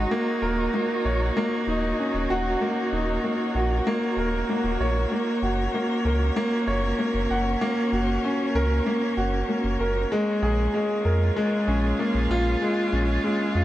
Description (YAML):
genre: piano and strings electronica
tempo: 96 BPM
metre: 4/4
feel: straight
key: unclear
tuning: A4 = 440 Hz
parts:
  - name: rich string quartet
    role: sustained chords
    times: 0.0-13.6 s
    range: Ab3 to Db5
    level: -30 LUFS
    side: equal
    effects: none
  - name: warm grand piano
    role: riff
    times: 0.0-13.6 s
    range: Ab3 to Gb5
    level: -24 LUFS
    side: equal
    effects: tape echo
  - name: warm sub bass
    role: bass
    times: 0.0-13.6 s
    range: Eb1 to F2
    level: -26 LUFS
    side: equal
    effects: tube saturation
  - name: swell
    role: sound effects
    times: 4.2-5.1 s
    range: none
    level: -40 LUFS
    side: right 1 dB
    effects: none
room: light reverb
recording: none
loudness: -22 LUFS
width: side -14 dB against mid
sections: 0.0-13.6 A section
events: swell 4.2-5.1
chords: 0.1 Ebm7; 5.1 Gb; 10.1 Bbm7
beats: | 0.11 0.74 1.36 1.99 | 2.61 3.24 3.86 4.49 | 5.11 5.74 6.36 6.99 | 7.61 8.24 8.86 9.49 | 10.11 10.74 11.36 11.99 | 12.61 13.24